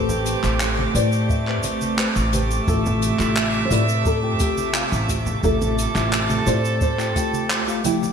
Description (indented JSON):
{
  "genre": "sunset chillout",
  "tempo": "87 BPM",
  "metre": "4/4",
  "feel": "straight",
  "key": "unclear",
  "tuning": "A4 = 440 Hz",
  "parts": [
    { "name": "nylon-string guitar", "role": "melody", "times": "0.0-8.0 s", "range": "E4 to E5", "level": "-28 LUFS", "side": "equal", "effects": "wide subtle chorus, ping-pong delay" },
    { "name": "mellow tine electric piano", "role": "accompaniment", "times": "0.0-8.1 s", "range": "F3 to G5", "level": "-26 LUFS", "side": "moving between left 7 dB and right 2 dB", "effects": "medium stereo tremolo, auto-pan, ping-pong delay" },
    { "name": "rich chamber string section", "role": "sustained chords", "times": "0.0-8.1 s", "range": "C3 to E5", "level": "-26 LUFS", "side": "right 2 dB", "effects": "none" },
    { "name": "upright bass", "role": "bass", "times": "0.0-8.1 s", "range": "A1 to A2", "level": "-24 LUFS", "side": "equal", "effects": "none" },
    { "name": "drifting glass-harmonics texture", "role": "texture", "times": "0.0-8.1 s", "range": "D6", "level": "-30 LUFS", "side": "right 3 dB", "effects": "chorus, built-in reverb" },
    { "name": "jazz brush drum kit", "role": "drums", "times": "0.1-8.1 s", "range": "handclaps, hi-hat, shaker", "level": "-26 LUFS", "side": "right 1 dB", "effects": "gated reverb" },
    { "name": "congas", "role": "percussion", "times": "0.1-8.1 s", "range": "none", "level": "-31 LUFS", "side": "left 2 dB", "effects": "none" },
    { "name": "electronic kick drum", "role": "drums", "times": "1.3-7.3 s", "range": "none", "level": "-23 LUFS", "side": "equal", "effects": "none" }
  ],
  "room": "moderate lush hall reverb, RT60 2.0 s",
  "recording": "bright 1980s-style digital production",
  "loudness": "-18 LUFS",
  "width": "side -7 dB against mid",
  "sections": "0.0-8.1 A section",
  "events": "none",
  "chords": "0.0 Am9; 2.7 Fmaj7/A"
}